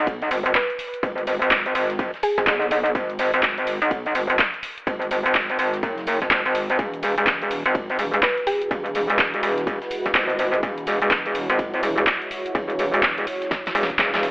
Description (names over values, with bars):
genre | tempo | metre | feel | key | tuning
bass house | 125 BPM | 4/4 | swing 62% on 16ths | G# minor | A4 = 438 Hz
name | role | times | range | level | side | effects
metallic wobble bass | bass | 0.0-14.3 s | E1 to B1 | -21 LUFS | equal | chorus, overdrive, sidechain pumping
dusty soul sampler-style drum kit | drums | 0.1-14.3 s | hi-hat, ride cymbal, snare drum | -34 LUFS | equal | none
electronic kick drum | drums | 0.1-14.1 s | none | -28 LUFS | equal | studio reverb
house drum kit | drums | 0.1-14.3 s | cabasa, handclaps, hi-hat, snare drum | -23 LUFS | equal | studio reverb
mallet-like synth pluck | melody | 0.6-2.4, 8.2-9.2 s | G#4 to B4 | -26 LUFS | equal | chorus, dub echo
deep dark ambient pad | sustained chords | 8.6-14.3 s | G#3 to C#5 | -29 LUFS | right 1 dB | chorus, built-in reverb, sidechain pumping
room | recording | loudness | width
light reverb, digital ambience | telephone sound | -19 LUFS | side -27 dB against mid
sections
0.0-14.3 A section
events
drum fill 13.5-14.3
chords
0.0 G#m; 6.8 Eadd9